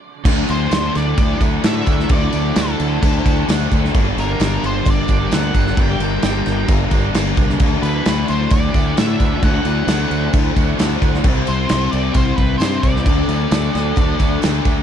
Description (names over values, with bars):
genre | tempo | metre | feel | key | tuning
rock, shoegaze and dream pop | 132 BPM | 4/4 | straight | D mixolydian | A4 = 441 Hz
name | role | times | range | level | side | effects
soft string machine | sustained chords | 0.2-14.8 s | D4 to Bb5 | -30 LUFS | equal | ensemble chorus
biting overdriven guitar | riff | 0.2-14.8 s | G2 to E4 | -24 LUFS | right 15 dB | reverse reverb
growling fingered electric bass | bass | 0.2-14.8 s | G1 to A2 | -20 LUFS | equal | overdrive
fuzz guitar | riff | 0.3-14.8 s | G2 to D4 | -22 LUFS | left 14 dB | distortion, wide subtle chorus
loose indie drum kit | drums | 0.3-14.8 s | crash cymbal, kick drum, snare drum | -18 LUFS | equal | none
tambourine | percussion | 0.3-14.8 s | none | -38 LUFS | right 16 dB | none
octave-fuzz lead guitar | melody | 0.5-14.4 s | A4 to G5 | -26 LUFS | equal | distortion, tape echo
room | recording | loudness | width
little or no reverb | dark, warm production | -14 LUFS | side -9 dB against mid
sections
0.3-14.8 A section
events
stop 0.0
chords
0.3 Dadd9; 4.0 Gmadd9; 7.6 Dadd9; 11.2 C; 13.1 D